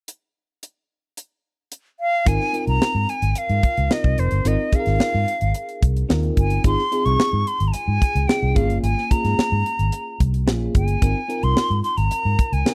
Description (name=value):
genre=polished 1980s jazz-funk pop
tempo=110 BPM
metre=4/4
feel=straight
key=Ab major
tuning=A4 = 436 Hz
part: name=tight funk drum kit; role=drums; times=0.1-12.7 s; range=hi-hat, kick drum, snare drum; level=-22 LUFS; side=equal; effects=none
part: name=bright silver concert flute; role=melody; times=2.0-12.7 s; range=C5 to Db6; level=-26 LUFS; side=equal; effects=none
part: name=bell-like FM electric piano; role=accompaniment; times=2.3-12.7 s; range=Bb3 to Bb4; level=-30 LUFS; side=equal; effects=tremolo, lush chorus
part: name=vintage muted fingered electric bass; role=bass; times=2.3-12.6 s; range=F1 to Ab2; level=-23 LUFS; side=equal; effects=none
room=small room ambience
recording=dry, close 1970s-style studio recording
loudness=-20 LUFS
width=mono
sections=0.1-2.3 A section; 2.3-12.7 B section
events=none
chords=0.1 N.C.; 2.3 Ab6; 6.6 Dbmaj7/Ab; 8.6 Bbm13/G; 11.0 Ab6